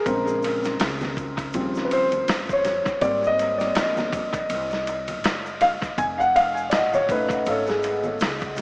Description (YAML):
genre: hip hop, jazz-hop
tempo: 81 BPM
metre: 4/4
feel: swing 57% on 16ths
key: unclear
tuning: A4 = 440 Hz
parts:
  - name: dark grand piano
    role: accompaniment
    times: 0.0-8.0 s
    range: Db3 to G#5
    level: -22 LUFS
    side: equal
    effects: dub echo
  - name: upright bass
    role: bass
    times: 0.1-8.6 s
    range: F1 to F2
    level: -36 LUFS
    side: equal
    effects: none
  - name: dusty soul sampler-style drum kit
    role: drums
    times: 0.1-8.6 s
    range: hi-hat, kick drum, ride cymbal, snare drum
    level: -27 LUFS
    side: equal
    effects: dub echo
  - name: tube shaker and congas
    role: percussion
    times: 0.1-8.6 s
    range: none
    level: -39 LUFS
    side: right 1 dB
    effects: dub echo
room: moderate spring reverb, RT60 2.4 s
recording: echo-heavy mix, vinyl crackle, small speaker sound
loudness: -20 LUFS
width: side -28 dB against mid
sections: 0.0-8.6 A section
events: grand piano solo 0.0-8.6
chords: 0.1 Bbm9; 1.5 Eb13; 3.0 Abmaj9; 6.0 F7alt